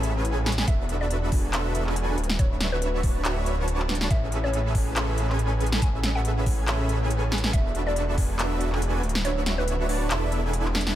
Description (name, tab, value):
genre	future bass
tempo	140 BPM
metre	4/4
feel	swing 55% on 16ths, half-time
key	A major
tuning	A4 = 439 Hz
part	dense compressed supersaw	riff	0.0-10.9 s	C#4 to A5	-29 LUFS	right 1 dB	sidechain pumping
part	wide detuned saw bass	bass	0.0-10.9 s	D1 to A1	-26 LUFS	equal	chorus, tube saturation, sidechain pumping
part	pop drum kit	drums	0.0-10.9 s	handclaps, hi-hat, snare drum	-30 LUFS	equal	none
part	mallet-like synth pluck	melody	0.7-9.8 s	B4 to G#5	-34 LUFS	equal	chorus, sidechain pumping, tape echo
part	electronic kick drum	drums	0.7-8.3 s	none	-24 LUFS	equal	none
room	light reverb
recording	none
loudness	-22 LUFS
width	side -12 dB against mid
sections	0.0-11.0 A section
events	drop 0.0-11.0; kick drops out 9.2-11.0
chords	0.0 Amaj9; 0.7 E9sus4; 2.2 Dmaj13; 4.1 Amaj9; 7.5 E9sus4; 9.0 Dmaj13; 10.1 E7sus4